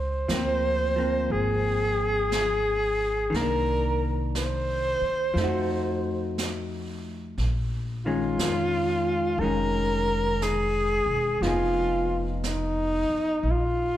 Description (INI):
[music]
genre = jazz ballad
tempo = 59 BPM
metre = 4/4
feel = swing 66% on 8ths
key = Bb minor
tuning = A4 = 441 Hz
[part]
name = breathy alto saxophone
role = melody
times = 0.0-14.0 s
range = Eb4 to C5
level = -25 LUFS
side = equal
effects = none
[part]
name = upright bass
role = bass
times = 0.0-14.0 s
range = E1 to F2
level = -30 LUFS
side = equal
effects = none
[part]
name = vintage hollow-body jazz guitar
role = accompaniment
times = 0.3-13.5 s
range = Eb3 to Ab4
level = -30 LUFS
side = left 2 dB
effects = none
[part]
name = jazz brush drum kit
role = drums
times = 0.3-14.0 s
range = brushed snare drum, hi-hat, snare drum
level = -37 LUFS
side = right 3 dB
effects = none
[sound]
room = moderate recital hall reverb, RT60 1.8 s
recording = recorded in a church or concert hall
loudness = -23 LUFS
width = side -12 dB against mid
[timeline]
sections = 0.0-14.0 A section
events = none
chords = 0.0 Db6 (rootless); 3.3 Cm9; 5.3 F7b9; 7.4 Bbm7; 11.4 Fm7b5; 13.5 Bb5